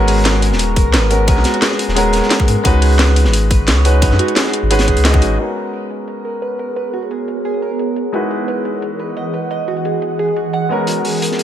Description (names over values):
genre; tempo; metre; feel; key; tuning
liquid drum and bass; 175 BPM; 4/4; straight; G# minor; A4 = 440 Hz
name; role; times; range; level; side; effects
warm concert grand piano; accompaniment; 0.0-11.4 s; G#3 to D#5; -20 LUFS; left 1 dB; low-pass filter, ping-pong delay
harp-like synth pluck; arpeggios; 0.0-11.4 s; F#4 to F#5; -22 LUFS; right 3 dB; chorus, tape echo
warm sub bass; bass; 0.0-5.4 s; D#1 to G#2; -14 LUFS; equal; none
crunchy breakbeat drum kit; drums; 0.1-5.3, 10.9-11.4 s; hi-hat, snare drum; -22 LUFS; left 1 dB; high-pass filter on hats, high-pass filter on snare, high-pass filter on room
drum and bass drum kit; drums; 0.1-11.4 s; crash cymbal, hi-hat, snare drum; -20 LUFS; equal; low-pass filter on hats, low-pass filter on snare, low-pass filter on cymbals, low-pass filter on room
electronic kick drum; drums; 0.8-5.2 s; none; -15 LUFS; equal; none
ethereal airy pad; sustained chords; 6.5-11.4 s; E3 to F#5; -22 LUFS; right 1 dB; ensemble chorus, built-in reverb, phaser, sidechain pumping
room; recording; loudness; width
light reverb, small room ambience; none; -13 LUFS; side -10 dB against mid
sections
0.0-5.4 A section; 5.4-11.4 B section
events
drop 0.0-5.4; band accent 5.0; filter sweep on ambient pad 5.4-11.4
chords
0.0 G#m11; 2.6 C#9sus4; 5.4 G#m11; 8.1 Emaj9; 10.7 G#m11